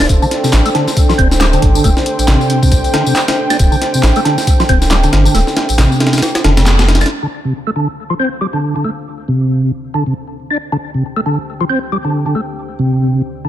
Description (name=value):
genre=breakbeat, breaks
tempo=137 BPM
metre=4/4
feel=swing 58% on 16ths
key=D minor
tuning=A4 = 440 Hz
part: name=dark analog pad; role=sustained chords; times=0.0-13.5 s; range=D3 to G5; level=-20 LUFS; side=right 1 dB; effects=chorus, sidechain pumping
part: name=percussive tonewheel organ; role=riff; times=0.0-13.5 s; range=C3 to D4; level=-16 LUFS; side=equal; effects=chorus vibrato, fast rotary speaker, low-pass filter, ping-pong delay
part: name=saturated sub bass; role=bass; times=0.0-7.0 s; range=D1 to C2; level=-13 LUFS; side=equal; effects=none
part: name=breakbeat sampler-style drum kit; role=drums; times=0.0-7.1 s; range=hi-hat, kick drum, snare drum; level=-14 LUFS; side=equal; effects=studio reverb
part: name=electronic tambourine and handclaps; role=drums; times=0.0-7.1 s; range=none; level=-21 LUFS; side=left 1 dB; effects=low-pass filter on perc, studio reverb, low-pass filter on snare
room=light reverb, digital ambience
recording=none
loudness=-11 LUFS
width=side -12 dB against mid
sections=0.0-7.1 A section; 7.1-13.5 B section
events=filter sweep on tonewheel organ 0.0-7.1, 7.1-13.5; band accent 6.7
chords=0.0 D7(no3); 7.1 Dm7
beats=| 0.09 0.53 0.97 1.41 | 1.84 2.28 2.72 3.16 | 3.60 4.03 4.47 4.91 | 5.35 5.79 6.22 6.66 | 7.10 7.54 7.98 8.41 | 8.85 9.29 9.73 10.16 | 10.60 11.04 11.48 11.92 | 12.36 12.79 13.23